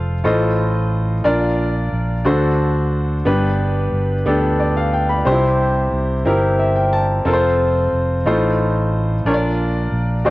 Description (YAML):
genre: slow gospel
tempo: 60 BPM (dotted quarters)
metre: 6/8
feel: straight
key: F major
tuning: A4 = 438 Hz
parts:
  - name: clear grand piano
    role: accompaniment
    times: 0.0-10.3 s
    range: G2 to B5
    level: -17 LUFS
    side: left 1 dB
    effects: none
  - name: fingered electric bass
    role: bass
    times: 0.0-10.3 s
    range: F1 to D2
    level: -19 LUFS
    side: equal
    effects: none
room: moderate plate reverb, RT60 3.3 s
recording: worn, warbling old tape, cassette tape, warbly pitch drift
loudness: -15 LUFS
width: side -18 dB against mid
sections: 0.0-10.3 A section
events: grand piano fill 6.3-7.3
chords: 0.3 F7/A; 1.3 Bb; 2.3 D7; 3.3 G; 5.3 C; 7.3 F; 8.3 F7/A; 9.3 Bb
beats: 0.25 | 1.26 2.26 | 3.26 4.26 | 5.26 6.26 | 7.26 8.26 | 9.26 10.26